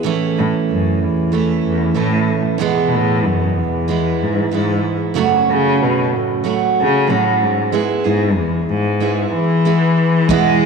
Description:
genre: acoustic pop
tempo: 94 BPM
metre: 4/4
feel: straight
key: unclear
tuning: A4 = 440 Hz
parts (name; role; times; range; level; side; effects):
- picked steel-string acoustic guitar; accompaniment; 0.0-10.7 s; E2 to G#4; -17 LUFS; right 6 dB; none
- warm cello; melody; 0.4-10.7 s; E2 to G#3; -17 LUFS; left 3 dB; none
- kick drum; drums; 10.3-10.4 s; none; -26 LUFS; left 5 dB; none
room: moderate echo chamber reverb, RT60 2.4 s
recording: 1960s-style stereo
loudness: -14 LUFS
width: side -5 dB against mid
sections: 0.0-10.3 A section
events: none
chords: 0.0 A; 2.6 E; 5.2 F#m; 7.7 E

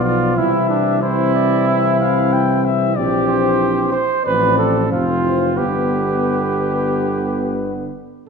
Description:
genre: classical, brass quintet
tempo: 91 BPM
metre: 4/4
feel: rubato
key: C major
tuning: A4 = 442 Hz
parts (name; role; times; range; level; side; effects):
- warm trumpet; melody; 0.0-7.9 s; B4 to G5; -24 LUFS; left 9 dB; none
- warm trumpet; second line; 0.0-7.6 s; D4 to C5; -19 LUFS; right 4 dB; none
- clear French horn; accompaniment; 0.0-8.0 s; B3 to C4; -22 LUFS; left 7 dB; none
- clear trombone; accompaniment; 0.0-7.9 s; D3 to F3; -25 LUFS; right 3 dB; none
- mellow tuba; bass; 0.0-8.0 s; F1 to C2; -22 LUFS; right 1 dB; none
room: wet scoring stage reverb, RT60 1.6 s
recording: minimal, uncompressed stereo recording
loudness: -15 LUFS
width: side -5 dB against mid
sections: 0.0-8.3 A section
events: none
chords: 0.4 C; 3.0 C7/Bb; 4.3 F/A; 5.6 G

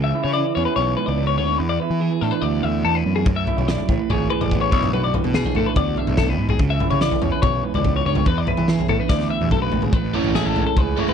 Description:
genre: math rock and midwest emo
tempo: 144 BPM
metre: 4/4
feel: straight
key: A major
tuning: A4 = 444 Hz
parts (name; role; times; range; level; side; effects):
- electric guitar through a small old amp; accompaniment; 0.0-11.1 s; E2 to G#4; -24 LUFS; right 13 dB; none
- twelve-string electric guitar; arpeggios; 0.0-11.1 s; G#4 to E5; -24 LUFS; left 11 dB; none
- fuzz picked electric bass; bass; 0.0-10.9 s; G#1 to E3; -23 LUFS; equal; overdrive
- loose indie drum kit; drums; 3.3-11.1 s; kick drum, snare drum, toms; -22 LUFS; left 1 dB; none
- overdriven semi-hollow guitar; riff; 10.1-11.1 s; A3 to A4; -23 LUFS; right 2 dB; none
room: little or no reverb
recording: none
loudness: -18 LUFS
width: side -7 dB against mid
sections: 0.0-9.9 A section; 9.9-11.1 B section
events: drum fill 9.1-9.9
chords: 0.0 C#m7; 1.6 E7sus4; 3.3 F#5; 3.9 Amaj9; 4.7 E7sus4/B; 6.6 C#m7; 8.3 E7sus4; 9.9 Amaj7

